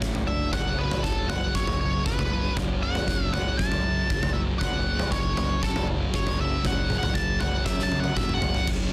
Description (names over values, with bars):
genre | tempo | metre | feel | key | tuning
quiet-loud alternative rock | 118 BPM | 4/4 | straight | unclear | A4 = 440 Hz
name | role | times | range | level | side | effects
electric guitar through a small old amp | arpeggios | 0.0-0.5 s | D3 to D4 | -38 LUFS | equal | subtle chorus
thick fuzz guitar | riff | 0.0-8.9 s | D2 to F#3 | -36 LUFS | equal | distortion
fuzz fingered electric bass | bass | 0.0-8.9 s | F#1 to F#2 | -34 LUFS | equal | overdrive
oversized low-tuned drum kit | drums | 0.0-8.8 s | crash cymbal, kick drum, snare drum, toms | -29 LUFS | equal | soft clipping on snare
octave-fuzz lead guitar | melody | 0.3-8.7 s | A4 to A5 | -32 LUFS | equal | distortion
thick fuzz guitar | riff | 0.5-8.9 s | F#2 to F#3 | -37 LUFS | equal | none
room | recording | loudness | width
light reverb | dense, heavily limited modern master | -26 LUFS | mono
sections
0.0-8.7 A section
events
lead electric guitar solo 0.0-8.7; drum fill 7.7-8.7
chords
0.0 D; 0.5 F#m